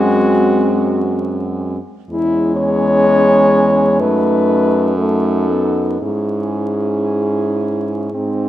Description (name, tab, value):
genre	classical, lyrical piece for horn quartet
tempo	55-65 BPM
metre	4/4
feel	rubato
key	C# minor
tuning	A4 = 439 Hz
part	dark French horn	melody	0.0-8.5 s	E4 to C#5	-17 LUFS	left 2 dB	none
part	mellow French horn	second line	0.0-8.5 s	B#3 to E4	-22 LUFS	right 6 dB	none
part	warm French horn	accompaniment	0.0-8.5 s	G#3 to C#4	-19 LUFS	left 1 dB	none
part	mellow French horn	bass	0.0-8.5 s	E2 to G#2	-20 LUFS	right 1 dB	none
room	moderate scoring stage reverb, RT60 1.6 s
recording	dark, warm production, vinyl crackle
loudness	-13 LUFS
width	side -13 dB against mid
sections	0.0-8.5 A section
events	none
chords	0.0 G#7/F#; 2.1 C#m/E; 4.0 D#dim/F#; 6.0 C#m/G#